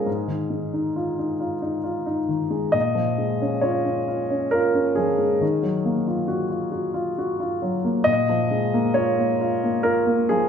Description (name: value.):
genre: neoclassical minimalist piano.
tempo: 67 BPM.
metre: 3/4.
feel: rubato.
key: Bb minor.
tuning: A4 = 440 Hz.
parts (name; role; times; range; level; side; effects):
warm upright piano; solo; 0.0-10.5 s; Ab2 to Eb5; -20 LUFS; equal; slapback echo.
room: moderate recital hall reverb, RT60 1.8 s.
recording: none.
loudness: -20 LUFS.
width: side -7 dB against mid.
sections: 0.0-10.5 A section.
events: none.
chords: 0.1 Fm7/Ab; 2.7 Bbm7; 5.4 Ebmadd9; 8.1 Bbm7.